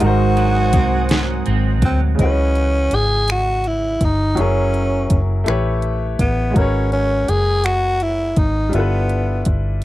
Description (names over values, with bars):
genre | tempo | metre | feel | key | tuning
slow six-eight R&B | 55 BPM (dotted quarters) | 6/8 | straight | C# dorian | A4 = 439 Hz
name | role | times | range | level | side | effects
breathy tenor saxophone | melody | 0.0-9.5 s | B3 to G#4 | -20 LUFS | equal | slapback echo
electric guitar at the edge of break-up | second line | 0.0-2.8 s | G#2 to B#3 | -23 LUFS | right 9 dB | analog chorus
clear grand piano | accompaniment | 0.0-9.8 s | C#3 to D#5 | -24 LUFS | left 2 dB | none
warm analog pad | sustained chords | 0.0-2.2 s | B#4 to D#6 | -29 LUFS | right 2 dB | chorus
vintage muted fingered electric bass | bass | 0.0-9.8 s | F#1 to D2 | -19 LUFS | equal | none
smooth R&B drum kit | drums | 0.0-9.8 s | finger snaps, hi-hat, kick drum, snare drum | -18 LUFS | equal | none
room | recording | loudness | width
little or no reverb | dry, close 1970s-style studio recording | -15 LUFS | side -16 dB against mid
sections
0.0-2.2 A section; 2.2-9.8 B section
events
none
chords
0.0 G#7; 2.2 C#m11; 4.4 F#7; 5.5 A9; 6.5 G#m11; 8.7 G13